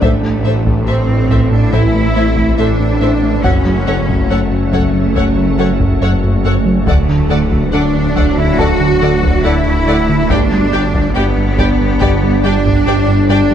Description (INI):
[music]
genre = cinematic, hybrid orchestral and electronic film score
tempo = 70 BPM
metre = 4/4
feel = straight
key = unclear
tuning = A4 = 440 Hz
[part]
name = clear symphonic violin section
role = melody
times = 0.0-13.4 s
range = E5 to G5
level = -27 LUFS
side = left 5 dB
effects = none
[part]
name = rich symphonic violin section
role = second line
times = 0.0-13.4 s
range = C5 to D5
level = -25 LUFS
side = left 4 dB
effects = none
[part]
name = rich symphonic viola section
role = accompaniment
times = 0.0-13.4 s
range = G4 to A4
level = -26 LUFS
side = equal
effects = none
[part]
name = mellow French horn section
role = sustained chords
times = 0.0-13.5 s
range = E3 to D4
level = -22 LUFS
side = left 4 dB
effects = none
[part]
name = soft additive organ-like pad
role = sustained chords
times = 0.0-13.5 s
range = G3 to D5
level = -21 LUFS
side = equal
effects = ensemble chorus, built-in reverb
[part]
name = smooth synth bass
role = riff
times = 0.0-13.5 s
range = D2 to A3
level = -17 LUFS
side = right 1 dB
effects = none
[part]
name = clear symphonic cello section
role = bass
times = 0.0-13.5 s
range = A3 to F#4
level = -18 LUFS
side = right 2 dB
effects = none
[part]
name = clear symphonic double bass section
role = bass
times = 0.0-13.5 s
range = F#1 to D2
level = -19 LUFS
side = right 3 dB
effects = none
[part]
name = phased detuned saw bass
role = bass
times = 0.0-13.5 s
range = D1 to A1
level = -20 LUFS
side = left 1 dB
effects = phaser
[part]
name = taiko ensemble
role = drums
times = 0.0-13.5 s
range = none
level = -20 LUFS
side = left 1 dB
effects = none
[part]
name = felt-muted upright piano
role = texture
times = 0.0-13.5 s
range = D4 to A5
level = -26 LUFS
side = left 2 dB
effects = ping-pong delay
[sound]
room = moderate scoring stage reverb, RT60 1.8 s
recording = dark, warm production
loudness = -11 LUFS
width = side -9 dB against mid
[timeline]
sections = 0.0-13.5 A section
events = none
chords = 0.0 Am; 3.4 F#m; 6.9 D; 10.3 G